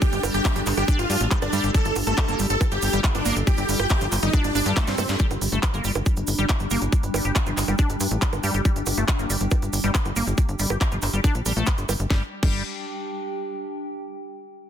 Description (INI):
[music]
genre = psychedelic trance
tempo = 139 BPM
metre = 4/4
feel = straight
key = unclear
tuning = A4 = 442 Hz
[part]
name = dense compressed supersaw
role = melody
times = 0.0-5.1 s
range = C4 to A4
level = -26 LUFS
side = right 1 dB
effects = phaser, sidechain pumping, tape echo
[part]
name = swarming drone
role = sustained chords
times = 0.0-12.1 s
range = G3 to F4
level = -33 LUFS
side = equal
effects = built-in reverb, sidechain pumping
[part]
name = drum and bass drum kit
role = drums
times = 0.0-12.5 s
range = bongos, crash cymbal, handclaps, hi-hat, snare drum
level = -29 LUFS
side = right 2 dB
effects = none
[part]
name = electronic kick drum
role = drums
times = 0.0-12.5 s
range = none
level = -21 LUFS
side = equal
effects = overdrive
[part]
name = cabasa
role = percussion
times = 0.0-12.1 s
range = none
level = -35 LUFS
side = right 5 dB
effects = none
[part]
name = warbly tape-like pad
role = texture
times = 0.0-13.8 s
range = D4 to G5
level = -34 LUFS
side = right 1 dB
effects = chorus, built-in reverb, sidechain pumping
[part]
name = tight sequencer bass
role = bass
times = 0.1-12.6 s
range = G1 to G2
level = -26 LUFS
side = equal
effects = none
[part]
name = liquid acid bass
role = riff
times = 0.2-12.6 s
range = F3 to G4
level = -30 LUFS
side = left 1 dB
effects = chorus, auto-pan, sidechain pumping, dub echo
[part]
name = formant-sweep wobble bass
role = second line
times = 0.3-0.7 s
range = G4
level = -43 LUFS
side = left 4 dB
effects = none
[sound]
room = light reverb, digital ambience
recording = dense, heavily limited modern master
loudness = -20 LUFS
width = side -9 dB against mid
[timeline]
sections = 0.0-5.2 A section; 5.2-12.1 B section; 12.1-13.8 C section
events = drop 0.0-5.2; drum fill 4.8-5.2; band accent 5.1; fade-out on ambient pad 5.2-12.1; filter sweep on synth drone 5.2-12.1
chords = 0.0 G5